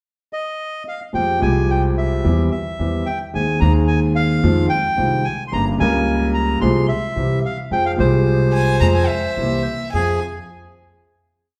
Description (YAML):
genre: tango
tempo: 110 BPM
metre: 4/4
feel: rubato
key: F minor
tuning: A4 = 440 Hz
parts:
  - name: bandoneon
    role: melody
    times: 0.3-10.2 s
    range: Ab4 to C6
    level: -25 LUFS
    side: equal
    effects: none
  - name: warm concert grand piano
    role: accompaniment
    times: 1.1-10.2 s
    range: G1 to Bb4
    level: -22 LUFS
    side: equal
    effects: none
  - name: upright bass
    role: bass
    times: 1.1-10.2 s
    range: G1 to F2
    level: -23 LUFS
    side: equal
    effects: none
  - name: clear violin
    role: second line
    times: 8.5-10.2 s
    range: E5 to Bb5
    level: -26 LUFS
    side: equal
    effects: none
room: wet large studio reverb, RT60 1.3 s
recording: heard from further back in the room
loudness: -18 LUFS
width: mono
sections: 0.0-1.1 pickup bar; 1.1-9.9 A section; 9.9-11.6 final chord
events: none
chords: 0.0 N.C.; 1.1 Fmadd9; 2.2 C/E; 3.3 Ab/Eb; 4.4 Fm7; 5.5 Gdim; 6.6 Fm/C; 7.2 C; 7.7 Fm; 9.4 C7; 9.9 Fm